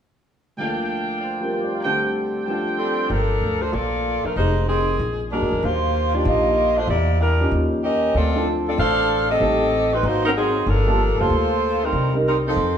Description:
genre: jazz, big band swing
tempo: 190 BPM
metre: 4/4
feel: swing 64% on 8ths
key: G minor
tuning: A4 = 440 Hz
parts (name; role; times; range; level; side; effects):
- warm grand piano; accompaniment; 0.6-3.1, 5.3-12.2 s; D2 to F5; -25 LUFS; equal; none
- clear trumpet section; stabs; 0.6-3.1 s; D4 to D6; -26 LUFS; right 2 dB; none
- mellow saxophone section; melody; 2.8-12.8 s; Eb3 to F5; -20 LUFS; equal; none
- upright bass; bass; 3.1-12.8 s; F1 to F2; -23 LUFS; equal; none
room: wet large studio reverb, RT60 1.4 s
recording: band playing live in one room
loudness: -18 LUFS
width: side -8 dB against mid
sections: 0.6-3.1 A section; 3.1-12.8 B section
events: none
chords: 0.6 Gm7/D; 1.8 D7sus4; 3.1 Gm9; 4.4 Fm9; 5.0 Bbaug7; 5.6 Ebmaj9; 6.9 Em7b5; 7.5 Eb9; 8.1 Dm7; 9.4 Am7b5; 10.0 Ab9; 10.7 Gm9; 11.9 Cm7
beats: | 0.58 0.90 1.21 1.52 | 1.84 2.16 2.47 2.79 | 3.10 3.42 3.73 4.05 | 4.36 4.68 4.99 5.31 | 5.62 5.94 6.25 6.57 | 6.89 7.20 7.52 7.83 | 8.15 8.46 8.78 9.10 | 9.41 9.73 10.04 10.36 | 10.67 10.99 11.30 11.62 | 11.94 12.25 12.57

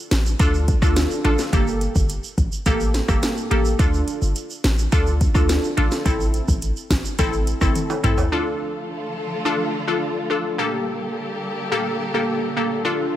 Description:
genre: dancehall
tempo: 106 BPM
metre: 4/4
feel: straight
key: D minor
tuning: A4 = 438 Hz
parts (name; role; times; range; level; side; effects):
- warm 808-style bass; bass; 0.1-8.3 s; G1 to D2; -21 LUFS; equal; none
- afro-pop drum kit; drums; 0.1-8.3 s; hi-hat, kick drum, rim click, snare drum, toms; -21 LUFS; equal; none
- tube shaker and timbales; percussion; 0.1-8.3 s; none; -34 LUFS; right 6 dB; none
- glassy wavetable pluck; accompaniment; 0.4-13.2 s; Bb3 to A4; -22 LUFS; left 1 dB; chorus
- warm studio string section; sustained chords; 8.3-13.2 s; D3 to A4; -27 LUFS; equal; sidechain pumping
room: digital ambience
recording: none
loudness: -18 LUFS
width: side -12 dB against mid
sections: 0.0-8.3 A section; 8.3-13.2 B section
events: drum fill 7.8-8.3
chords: 0.0 Dm; 1.5 Gmadd9; 3.8 Dm; 6.1 Am; 8.3 Dm; 10.6 Gmadd9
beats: 0.40 0.96 | 1.53 2.10 2.66 3.23 | 3.79 4.36 4.93 5.49 | 6.06 6.62 7.19 7.76 | 8.32 8.89 9.45 10.02 | 10.59 11.15 11.72 12.29 | 12.85

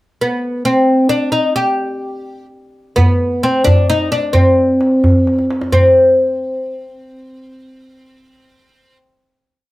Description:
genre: Persian modal ensemble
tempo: 87 BPM (dotted quarters)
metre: 6/8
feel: straight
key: C avaz esfahan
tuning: A4 = 440 Hz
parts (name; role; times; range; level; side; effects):
- oud; melody; 0.2-9.0 s; B3 to G4; -13 LUFS; equal; none
- tombak; percussion; 3.0-5.9 s; none; -14 LUFS; right 1 dB; none
room: light reverb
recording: none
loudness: -11 LUFS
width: side -17 dB against mid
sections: 0.2-5.7 A section; 5.7-8.5 final note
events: drum fill 5.3-5.7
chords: none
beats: | 0.22 0.91 | 1.60 2.28 | 2.97 3.66 | 4.35 5.03 | 5.72 6.41 | 7.09 7.78

